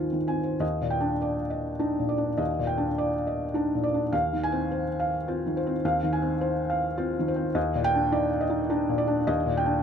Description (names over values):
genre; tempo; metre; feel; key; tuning
neoclassical minimalist piano; 104 BPM; 3/4; rubato; Eb major; A4 = 441 Hz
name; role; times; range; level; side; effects
felt-muted upright piano; solo; 0.0-9.8 s; Eb2 to Ab5; -24 LUFS; equal; none
room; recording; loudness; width
little or no reverb; close, detailed microphones; -24 LUFS; side -7 dB against mid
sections
0.6-9.8 A section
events
none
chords
0.0 Ab6/Eb; 0.6 Ebmaj7; 4.1 Ab6/Eb; 7.6 Ebmaj7